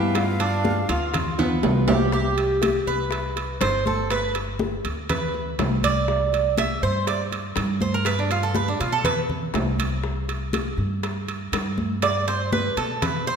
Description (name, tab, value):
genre	latin, Cuban son and guajira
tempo	121 BPM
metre	4/4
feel	straight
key	unclear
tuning	A4 = 440 Hz
part	breathy jazz flute	melody	0.0-1.4 s	F5	-32 LUFS	left 1 dB	none
part	nylon-string guitar	accompaniment	0.0-2.1 s	E3 to F4	-30 LUFS	left 3 dB	none
part	Cuban tres	arpeggios	0.0-13.4 s	B3 to E5	-24 LUFS	right 3 dB	none
part	upright bass	bass	0.0-13.4 s	G1 to B2	-26 LUFS	equal	none
part	bongos	percussion	0.1-13.4 s	none	-32 LUFS	left 7 dB	none
part	congas	percussion	0.2-13.4 s	none	-30 LUFS	left 1 dB	none
part	timbales	percussion	0.2-13.3 s	none	-29 LUFS	right 4 dB	none
room	wet concert hall reverb, RT60 1.8 s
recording	minimal, uncompressed stereo recording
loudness	-21 LUFS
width	side -6 dB against mid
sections	0.0-2.1 A section; 2.1-13.4 B section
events	drum fill 1.4-2.1; Cuban tres solo 2.1-13.4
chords	0.2 G7; 2.1 C5; 4.1 G; 6.1 Csus2; 8.1 G; 10.0 C5; 12.0 G